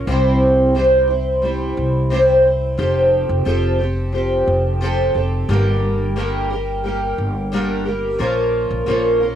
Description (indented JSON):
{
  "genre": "acoustic pop",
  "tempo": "89 BPM",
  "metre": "4/4",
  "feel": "straight",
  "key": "F major",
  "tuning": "A4 = 440 Hz",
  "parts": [
    { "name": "fingerpicked twelve-string acoustic guitar", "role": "accompaniment", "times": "0.0-9.4 s", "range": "G2 to C5", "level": "-17 LUFS", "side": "equal", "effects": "double-tracked left and right, cassette tape" },
    { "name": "upright bass", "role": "bass", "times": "0.0-9.4 s", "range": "F1 to C2", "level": "-21 LUFS", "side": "equal", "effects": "none" }
  ],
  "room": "light reverb",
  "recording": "home recording on cassette",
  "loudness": "-15 LUFS",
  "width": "side -10 dB against mid",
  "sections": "0.0-9.4 A section",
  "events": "none",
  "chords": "0.1 C; 2.8 Fadd9; 5.5 Gm; 8.2 Bbm"
}